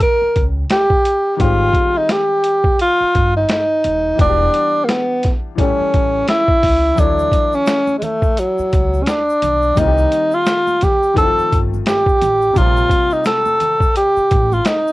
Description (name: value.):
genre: hip hop, jazz-hop.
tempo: 86 BPM.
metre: 4/4.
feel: swing 59% on 16ths.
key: unclear.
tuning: A4 = 443 Hz.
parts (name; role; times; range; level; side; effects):
breathy tenor saxophone; melody; 0.0-14.9 s; F#3 to Bb4; -14 LUFS; equal; cassette tape.
warm upright piano; accompaniment; 0.0-14.9 s; C3 to C#5; -26 LUFS; left 8 dB; cassette tape.
boom bap sampler-style drum kit; drums; 0.0-14.8 s; hi-hat, kick drum, snare drum; -18 LUFS; equal; cassette tape.
upright bass; bass; 0.2-14.6 s; Eb1 to D2; -20 LUFS; equal; none.
egg shaker and congas; percussion; 7.0-14.9 s; none; -34 LUFS; right 8 dB; none.
room: light reverb.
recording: home recording on cassette.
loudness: -13 LUFS.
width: side -18 dB against mid.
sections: 0.0-14.9 A section.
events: none.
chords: 0.0 Eb7; 1.4 Abmaj7; 4.2 Em7; 5.6 A7; 7.0 Dmaj9; 9.8 Cm7; 11.2 F7; 12.6 Bbsus2.